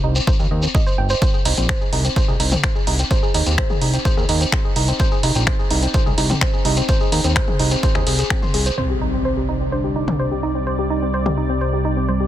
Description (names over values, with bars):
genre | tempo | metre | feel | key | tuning
melodic techno | 127 BPM | 4/4 | straight | C minor | A4 = 440 Hz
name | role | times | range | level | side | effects
woody wave-folded pluck | arpeggios | 0.0-12.3 s | C4 to C6 | -23 LUFS | right 1 dB | chorus, sidechain pumping, digital delay
fat analog bass | bass | 0.0-12.3 s | G1 to Eb2 | -21 LUFS | equal | tube saturation, sidechain pumping
shekere | percussion | 0.2-8.8 s | none | -28 LUFS | left 1 dB | none
electronic kick drum | drums | 0.3-8.4 s | none | -19 LUFS | equal | none
punchy analog drum machine | drums | 1.2-11.4 s | finger snaps, hi-hat, toms | -23 LUFS | left 1 dB | soft clipping on snare
soft octave-layered synth lead | melody | 8.8-12.3 s | G3 to D4 | -27 LUFS | left 1 dB | chorus, cassette tape, sidechain pumping, ping-pong delay
lush unison pad | sustained chords | 8.8-12.3 s | C3 to D5 | -25 LUFS | left 1 dB | chorus, sidechain pumping
impact | sound effects | 8.8-10.7 s | none | -28 LUFS | equal | none
room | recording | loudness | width
digital ambience | dense, heavily limited modern master | -16 LUFS | side -12 dB against mid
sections
0.0-8.8 A section; 8.8-12.3 B section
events
impact 8.8-10.7; filter sweep on synth pluck 8.8-12.3; filter sweep on soft synth lead 8.8-12.3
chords
0.0 Cm; 1.2 Ab (rootless); 8.8 C5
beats
0.27 0.75 | 1.22 1.69 2.16 2.63 | 3.11 3.58 4.05 4.53 | 5.00 5.47 5.94 6.42 | 6.89 7.36 7.83 8.30 | 8.78 9.25 9.72 10.20 | 10.67 11.14 11.61 12.08